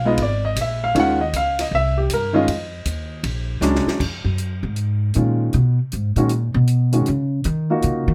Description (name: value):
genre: jazz piano trio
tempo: 157 BPM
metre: 4/4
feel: swing 65% on 8ths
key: Eb minor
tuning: A4 = 440 Hz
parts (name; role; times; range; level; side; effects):
- warm concert grand piano; melody; 0.0-8.1 s; Eb3 to Gb5; -22 LUFS; equal; none
- upright bass; bass; 0.0-8.1 s; Ab1 to Eb3; -23 LUFS; equal; none
- compact cocktail drum kit; drums; 0.2-7.9 s; crash cymbal, hi-hat, kick drum, ride cymbal, snare drum; -32 LUFS; equal; none
room: light reverb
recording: none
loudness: -20 LUFS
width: mono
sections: 0.0-4.0 A section; 4.0-8.1 A section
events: grand piano solo 0.0-4.0; drum fill 3.6-4.0; upright bass solo 4.0-8.1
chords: 0.0 Bb7b9; 0.9 Dbadd9; 1.7 C5; 2.5 Ebsus2; 3.2 Bb7alt; 4.0 Ebm7; 5.5 Abm; 7.1 Ebm7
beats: 0.18 0.56 | 0.94 1.33 1.71 2.09 | 2.47 2.85 3.24 3.62 | 4.00 4.38 4.77 5.15 | 5.53 5.91 6.29 6.68 | 7.06 7.44 7.82